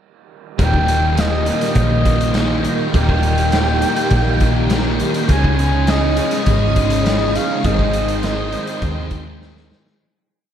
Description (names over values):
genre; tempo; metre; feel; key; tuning
rock, shoegaze and dream pop; 102 BPM; 4/4; straight; Eb mixolydian; A4 = 439 Hz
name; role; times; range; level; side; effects
breathy flute-like synth lead; melody; 0.6-9.4 s; Eb5 to Ab5; -22 LUFS; equal; chorus, analog delay
phased string machine; sustained chords; 0.6-10.0 s; Eb4 to Ab5; -25 LUFS; equal; ensemble chorus, phaser
raw garage guitar; riff; 0.6-10.0 s; Eb2 to Ab4; -23 LUFS; right 9 dB; overdrive, reverse reverb
thick fuzz guitar; riff; 0.6-10.0 s; Eb2 to Db4; -23 LUFS; left 10 dB; distortion, analog chorus
hollow-body short-scale picked electric bass; bass; 0.6-9.7 s; Eb1 to Eb2; -19 LUFS; equal; none
raw garage drum kit; drums; 0.6-10.0 s; hi-hat, kick drum, snare drum; -21 LUFS; equal; none
room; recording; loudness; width
moderate plate reverb, RT60 2.0 s, small room ambience; dreamy mix soaked in reverb; -14 LUFS; side -9 dB against mid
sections
0.6-10.0 verse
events
fade-out 7.7-10.0; drum fill 9.4-10.0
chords
0.6 Eb; 5.3 Dbsus2; 7.7 Abmaj7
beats
| 0.60 1.18 1.77 2.35 | 2.94 3.53 4.12 4.71 | 5.29 5.88 6.47 7.06 | 7.65 8.24 8.83 9.41